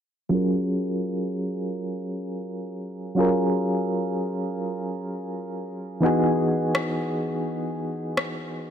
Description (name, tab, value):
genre	contemporary R&B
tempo	84 BPM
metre	4/4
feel	swing 58% on 16ths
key	F# major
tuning	A4 = 439 Hz
part	soft electric-piano-like synth keys	accompaniment	0.3-8.7 s	E3 to A#4	-24 LUFS	equal	chorus, tremolo, low-pass filter
part	electronic rim click	drums	6.7-8.4 s	none	-28 LUFS	left 1 dB	none
room	light reverb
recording	none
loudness	-24 LUFS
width	side -8 dB against mid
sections	0.3-8.7 A section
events	filter sweep on synth keys 0.3-8.7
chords	0.3 F#maj9; 6.0 Emaj9